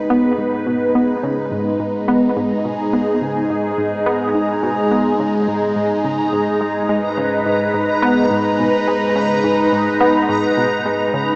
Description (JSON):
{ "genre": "ambient, sequencer-driven space music", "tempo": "106 BPM", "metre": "4/4", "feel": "straight", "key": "G# minor", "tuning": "A4 = 440 Hz", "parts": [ { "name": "phased analog pad", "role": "sustained chords", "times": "0.0-11.4 s", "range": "G#2 to B4", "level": "-16 LUFS", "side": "equal", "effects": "phaser, chorus" }, { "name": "bubbling stepped-filter texture", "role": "texture", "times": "0.0-11.4 s", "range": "A#5", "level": "-27 LUFS", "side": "equal", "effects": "chorus, built-in reverb" }, { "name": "tight sequenced synth", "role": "riff", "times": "0.1-11.4 s", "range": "G#2 to B3", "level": "-20 LUFS", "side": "equal", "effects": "chorus, analog delay" } ], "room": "wet huge ambient reverb, RT60 8.3 s", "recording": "small speaker sound", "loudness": "-15 LUFS", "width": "side -28 dB against mid", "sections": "0.0-11.4 A section", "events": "fade-in on synth texture 0.0-11.4", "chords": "0.0 G#m" }